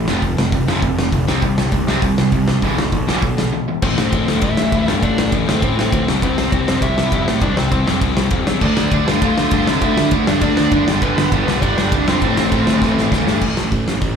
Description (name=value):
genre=punk rock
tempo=200 BPM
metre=4/4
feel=straight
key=A minor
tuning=A4 = 440 Hz
part: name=cranked stack guitar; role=riff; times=0.0-3.8, 8.6-13.4 s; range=E2 to D4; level=-21 LUFS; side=right 14 dB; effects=overdrive
part: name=crunchy overdriven guitar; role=riff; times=0.0-13.4 s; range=E2 to D4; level=-20 LUFS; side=left 10 dB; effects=slapback echo
part: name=fuzz picked electric bass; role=bass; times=0.0-14.2 s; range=F1 to C3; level=-20 LUFS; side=right 1 dB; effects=overdrive
part: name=loose indie drum kit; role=drums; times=0.1-14.1 s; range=crash cymbal, hi-hat, kick drum, ride cymbal, snare drum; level=-19 LUFS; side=equal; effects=none
part: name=dark smooth lead guitar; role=melody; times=3.8-13.1 s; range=B3 to F5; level=-23 LUFS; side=right 2 dB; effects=overdrive, slapback echo
room=little or no reverb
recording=live gig heard through the venue's PA, club reverb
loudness=-14 LUFS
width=side -7 dB against mid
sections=0.0-3.8 A section; 3.8-13.4 B section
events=break 3.5; drum fill 12.8-13.4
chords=0.1 F5; 1.3 C5; 2.6 E5/B; 3.8 Am; 6.1 C; 8.6 Dm; 10.9 G; 12.2 Am; 13.4 A5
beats=| 0.23 0.53 0.83 1.13 | 1.43 1.73 2.03 2.33 | 2.63 2.93 3.23 3.53 | 3.83 4.13 4.43 4.73 | 5.03 5.33 5.63 5.93 | 6.23 6.53 6.83 7.13 | 7.43 7.73 8.03 8.32 | 8.62 8.92 9.22 9.52 | 9.82 10.12 10.42 10.72 | 11.02 11.32 11.62 11.92 | 12.22 12.52 12.82 13.12 | 13.43 13.73 14.03